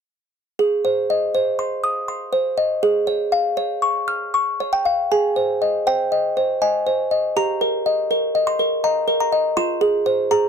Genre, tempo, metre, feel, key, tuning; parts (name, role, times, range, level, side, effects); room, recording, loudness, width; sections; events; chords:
classical, lullaby for music box; 81 BPM; 3/4; rubato; Ab major; A4 = 440 Hz
music box; solo; 0.6-10.5 s; F4 to F6; -18 LUFS; equal
moderate booth ambience, RT60 0.2 s; dry, close 1970s-style studio recording; -18 LUFS; side -7 dB against mid
0.6-5.1 A section; 5.1-10.5 B section
0.6 Ab; 2.8 Db/Ab; 5.1 Ab; 7.4 Eb/G; 9.6 Fm